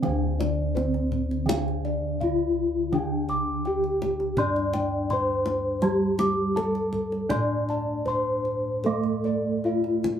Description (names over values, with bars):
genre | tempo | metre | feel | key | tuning
Javanese gamelan | 82 BPM | 4/4 | uneven beats | D slendro | A4 = 441 Hz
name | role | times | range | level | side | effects
gamelan-type bronze metallophone | melody | 0.0-10.2 s | C4-25c to D5 | -27 LUFS | left 1 dB | none
gamelan-type bronze metallophone | accompaniment | 0.0-10.2 s | D3 to D4 | -29 LUFS | right 2 dB | none
gamelan-type bossed gongs | arpeggios | 0.0-10.1 s | C5-25c to D6 | -32 LUFS | equal | none
gamelan-type bossed gongs | bass | 0.0-10.2 s | D2 to A4 | -31 LUFS | left 1 dB | none
kendang | percussion | 0.0-10.2 s | none | -33 LUFS | left 1 dB | none
room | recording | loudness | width
moderate studio ambience, RT60 0.4 s | band playing live in one room | -23 LUFS | side -8 dB against mid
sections
0.0-10.2 A section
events
none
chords
none